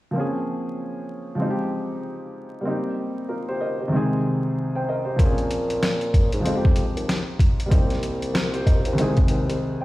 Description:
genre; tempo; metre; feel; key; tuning
hip hop, boom-bap hip-hop; 95 BPM; 4/4; swing 60% on 16ths; Bb dorian; A4 = 440 Hz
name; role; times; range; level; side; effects
dark grand piano; accompaniment; 0.1-9.8 s; C2 to G5; -24 LUFS; equal; cassette tape, high-pass filter, low-pass filter
dark bassoon; bass; 5.2-9.6 s; C2 to Bb2; -27 LUFS; left 1 dB; none
boom bap sampler-style drum kit; drums; 5.2-9.6 s; hi-hat, kick drum, snare drum; -20 LUFS; equal; none
room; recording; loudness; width
light reverb, small room reverb; played on a big sound system in a bare room, stone room reverb, vinyl crackle; -20 LUFS; side -17 dB against mid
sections
0.1-9.8 A section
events
break 9.6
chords
0.1 Bbm7; 1.4 Fm7; 2.7 Cm7; 3.9 Ab/C; 5.2 Bbm7; 6.5 Fm7; 7.7 Cm7; 9.0 Ab/C

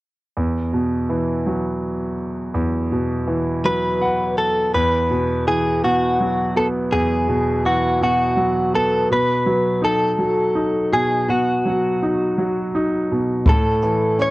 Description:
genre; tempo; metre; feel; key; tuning
six-eight pop ballad; 55 BPM (dotted quarters); 6/8; straight; E major; A4 = 439 Hz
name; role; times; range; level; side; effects
bright grand piano; accompaniment; 0.4-14.3 s; E2 to F#5; -20 LUFS; right 1 dB; cassette tape
direct-recorded clean electric guitar; melody; 3.7-14.3 s; F#4 to C#5; -19 LUFS; equal; none
jazz brush drum kit; drums; 13.5-14.3 s; hi-hat, kick drum; -16 LUFS; equal; cassette tape
room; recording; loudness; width
light reverb; home recording on cassette; -17 LUFS; side -19 dB against mid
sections
0.4-4.7 A section; 4.7-14.3 B section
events
grand piano fill 3.6-4.7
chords
0.4 Esus2; 9.1 B; 13.5 A

